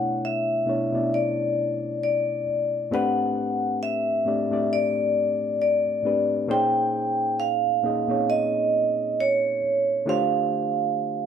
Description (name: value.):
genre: R&B.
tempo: 67 BPM.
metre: 4/4.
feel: swing 55% on 16ths.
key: unclear.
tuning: A4 = 442 Hz.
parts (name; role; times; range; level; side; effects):
vibraphone with medium hard mallets; melody; 0.0-11.3 s; C#5 to G5; -23 LUFS; right 1 dB; none.
overdriven reed electric piano; accompaniment; 0.0-11.3 s; A2 to G5; -27 LUFS; left 2 dB; none.
room: moderate studio reverb, RT60 0.5 s.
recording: band playing live in one room.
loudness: -21 LUFS.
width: side -8 dB against mid.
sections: 0.0-11.3 A section.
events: none.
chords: 0.0 Bm11; 2.9 Am11; 6.5 A#m11; 10.1 Dm11.